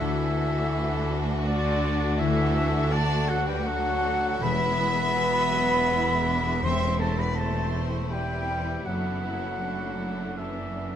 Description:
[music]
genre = cinematic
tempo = 81 BPM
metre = 3/4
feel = rubato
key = unclear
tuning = A4 = 440 Hz
[part]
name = warm symphonic violin section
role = melody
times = 0.0-11.0 s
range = D4 to F#4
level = -37 LUFS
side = left 3 dB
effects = none
[part]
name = clear oboe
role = second line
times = 0.0-11.0 s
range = D5 to C6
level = -32 LUFS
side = equal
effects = none
[part]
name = mellow clarinet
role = second line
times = 0.0-11.0 s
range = D4 to C5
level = -34 LUFS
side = left 2 dB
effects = none
[part]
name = mellow hollow silver concert flute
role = second line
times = 0.0-11.0 s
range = D5 to C6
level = -31 LUFS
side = equal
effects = none
[part]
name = rich chamber violin section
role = second line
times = 0.0-10.9 s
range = F#4 to E5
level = -36 LUFS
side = right 1 dB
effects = none
[part]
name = warm symphonic viola section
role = accompaniment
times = 0.0-11.0 s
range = F#3 to E4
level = -36 LUFS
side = equal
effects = none
[part]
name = warm French horn section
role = sustained chords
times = 0.0-11.0 s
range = D3 to C4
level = -34 LUFS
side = left 1 dB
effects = none
[part]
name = concert harp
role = arpeggios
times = 0.0-11.0 s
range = F#2 to F#5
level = -36 LUFS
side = left 10 dB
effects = none
[part]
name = rich studio double bass section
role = bass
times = 0.0-11.0 s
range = E1 to D2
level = -30 LUFS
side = right 2 dB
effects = none
[part]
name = rich symphonic cello section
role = bass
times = 0.0-11.0 s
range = D2 to F#2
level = -32 LUFS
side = right 1 dB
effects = none
[part]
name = timpani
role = percussion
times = 4.4-7.7 s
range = E2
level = -36 LUFS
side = left 2 dB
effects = none
[sound]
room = moderate recital hall reverb, RT60 1.6 s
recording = close, detailed microphones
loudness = -23 LUFS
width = side -9 dB against mid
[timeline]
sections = 0.0-11.0 A section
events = none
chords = 0.0 Dadd9; 4.4 E; 6.6 Am/E; 8.9 Dadd9/F#

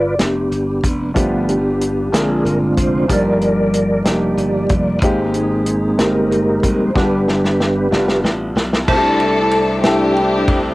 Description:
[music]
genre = slow gospel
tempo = 62 BPM (dotted quarters)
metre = 6/8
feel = straight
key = C major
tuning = A4 = 439 Hz
[part]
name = percussive tonewheel organ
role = sustained chords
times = 0.0-10.7 s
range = D3 to D6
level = -17 LUFS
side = equal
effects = slow rotary speaker, chorus vibrato
[part]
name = glassy slap bass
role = bass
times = 0.0-10.7 s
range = F1 to C2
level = -24 LUFS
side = equal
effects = none
[part]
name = warm soul drum kit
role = drums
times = 0.2-10.6 s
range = crash cymbal, hi-hat, kick drum, ride cymbal, snare drum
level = -19 LUFS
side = equal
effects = none
[part]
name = warm upright piano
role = accompaniment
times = 1.1-10.7 s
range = G2 to A4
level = -22 LUFS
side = equal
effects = none
[part]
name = warm chamber string section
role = melody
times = 8.9-10.7 s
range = D4 to A4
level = -15 LUFS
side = left 1 dB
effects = cassette tape
[sound]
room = light reverb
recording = home recording on cassette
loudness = -14 LUFS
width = side -19 dB against mid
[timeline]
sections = 0.0-8.9 A section; 8.9-10.7 B section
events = tonewheel organ solo 0.0-8.9; drum fill 7.0-8.9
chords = 0.0 G7; 2.1 Bb7; 3.1 Ebmaj7/G; 5.0 Abmaj7; 7.0 G; 8.9 C69

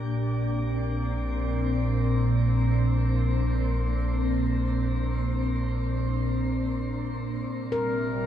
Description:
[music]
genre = ambient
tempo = free time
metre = none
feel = none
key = unclear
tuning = A4 = 440 Hz
[part]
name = glassy FM pad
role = sustained chords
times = 0.0-8.3 s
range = Bb2 to D4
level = -26 LUFS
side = equal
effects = ensemble chorus, built-in reverb
[part]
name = warm sub bass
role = bass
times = 0.0-8.3 s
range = Ab1 to Bb1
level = -30 LUFS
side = equal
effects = none
[part]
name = organ-like drone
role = drone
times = 7.6-8.3 s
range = C3 to G3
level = -38 LUFS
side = left 1 dB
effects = ensemble chorus, built-in reverb
[part]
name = handpan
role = arpeggios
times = 7.7-8.3 s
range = Bb4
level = -27 LUFS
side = left 1 dB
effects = none
[sound]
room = moderate shimmer reverb, RT60 6.6 s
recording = cassette tape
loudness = -24 LUFS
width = side -10 dB against mid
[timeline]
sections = 0.0-7.5 A section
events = none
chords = 0.0 Bb; 7.5 Abadd9

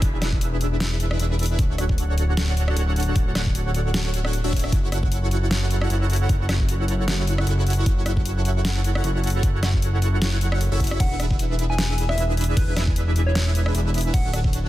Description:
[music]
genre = future bass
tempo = 153 BPM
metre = 4/4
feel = swing 56% on 16ths, half-time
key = F# minor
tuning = A4 = 440 Hz
[part]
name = big bright polysynth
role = riff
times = 0.0-14.7 s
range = D4 to F#5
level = -28 LUFS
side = right 1 dB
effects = chorus, sidechain pumping, dub echo
[part]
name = fat analog bass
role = bass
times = 0.0-14.7 s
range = D1 to F#1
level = -22 LUFS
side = equal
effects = sidechain pumping
[part]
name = dubstep drum kit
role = drums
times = 0.0-14.6 s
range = crash cymbal, hi-hat, rim click, snare drum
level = -28 LUFS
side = equal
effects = overdrive
[part]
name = electronic kick drum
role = drums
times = 0.0-14.5 s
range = none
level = -21 LUFS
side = equal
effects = overdrive
[part]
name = downlifter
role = sound effects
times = 0.0-1.6 s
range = none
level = -45 LUFS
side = equal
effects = none
[part]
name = soft struck synth lead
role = melody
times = 11.0-14.3 s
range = B4 to G#5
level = -31 LUFS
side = left 1 dB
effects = chorus, sidechain pumping, dub echo
[sound]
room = little or no reverb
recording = dense, heavily limited modern master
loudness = -19 LUFS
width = side -15 dB against mid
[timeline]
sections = 0.0-14.7 A section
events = none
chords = 0.0 E7; 1.6 Dmaj7; 4.7 F#m7; 11.0 E7; 14.1 Dmaj7

